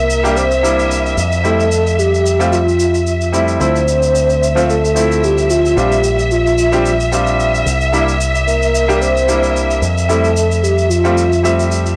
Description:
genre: nu-disco, nu disco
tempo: 111 BPM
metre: 4/4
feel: swing 54% on 16ths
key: unclear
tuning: A4 = 440 Hz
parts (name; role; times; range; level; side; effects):
- soft octave-layered synth lead; melody; 0.0-12.0 s; F4 to C5; -18 LUFS; equal; chorus, tremolo, tape echo
- rich studio violin section; sustained chords; 0.0-12.0 s; E5; -22 LUFS; equal; none
- picked electric bass with an envelope filter; bass; 0.0-12.0 s; Bb1 to F2; -20 LUFS; equal; none
- shaker; drums; 0.1-12.0 s; none; -29 LUFS; equal; studio reverb
- clear concert grand piano; accompaniment; 0.2-12.0 s; F3 to E5; -21 LUFS; equal; tape echo
room: light reverb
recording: dry, gritty hardware recording, cassette tape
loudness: -14 LUFS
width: mono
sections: 0.0-12.0 A section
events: none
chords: 0.0 C7; 1.2 Fmaj7; 3.6 Dm7; 5.8 Bb6; 7.7 C7; 9.8 Fmaj7

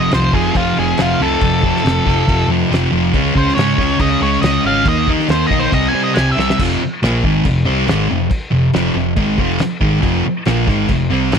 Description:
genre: garage rock duo or trio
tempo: 139 BPM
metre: 4/4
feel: straight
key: unclear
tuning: A4 = 440 Hz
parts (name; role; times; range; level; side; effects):
- octave-fuzz lead guitar; melody; 0.0-6.6 s; F4 to Ab5; -19 LUFS; equal; distortion, tape echo
- fuzz guitar; riff; 0.0-11.4 s; F2 to Eb4; -15 LUFS; equal; distortion
- hollow-body short-scale fingered electric bass; bass; 0.0-11.4 s; F1 to C3; -21 LUFS; equal; overdrive
- cloth-damped thuddy drum kit; drums; 0.1-11.4 s; crash cymbal, kick drum, snare drum; -21 LUFS; equal; none
room: small room ambience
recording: none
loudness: -13 LUFS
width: side -7 dB against mid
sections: 0.0-6.6 A section; 6.6-11.4 B section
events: lead electric guitar solo 0.0-6.6; drum fill 6.4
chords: 0.0 F; 3.1 Db5; 4.9 Eb5; 5.7 C5; 6.6 F5

